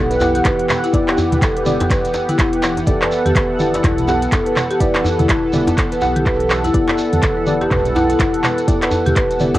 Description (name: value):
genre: afro house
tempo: 124 BPM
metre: 4/4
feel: swing 59% on 16ths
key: E minor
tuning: A4 = 439 Hz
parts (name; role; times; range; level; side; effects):
- warm analog pad; sustained chords; 0.0-9.6 s; E3 to F#5; -21 LUFS; right 1 dB; chorus, sidechain pumping
- marimba with medium mallets; arpeggios; 0.0-9.6 s; E4 to B4; -20 LUFS; left 1 dB; sidechain pumping, tape echo
- deep mellow chord stab; stabs; 0.0-9.6 s; B3 to F#5; -22 LUFS; equal; chorus, sidechain pumping, tape echo
- warm sub bass; bass; 0.0-9.6 s; E1 to E2; -25 LUFS; equal; sidechain pumping
- afro-pop drum kit; drums; 0.1-9.6 s; handclaps, hi-hat, toms; -21 LUFS; equal; cassette tape
- congas; percussion; 0.1-9.6 s; none; -27 LUFS; right 2 dB; none
- shekere; percussion; 0.1-9.6 s; none; -35 LUFS; right 2 dB; none
- djembe; percussion; 0.2-9.6 s; none; -24 LUFS; left 1 dB; none
- electronic kick drum; drums; 0.5-9.3 s; none; -19 LUFS; equal; cassette tape
room: light reverb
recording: home recording on cassette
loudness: -14 LUFS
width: side -15 dB against mid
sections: 0.0-9.6 A section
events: none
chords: 0.0 Em7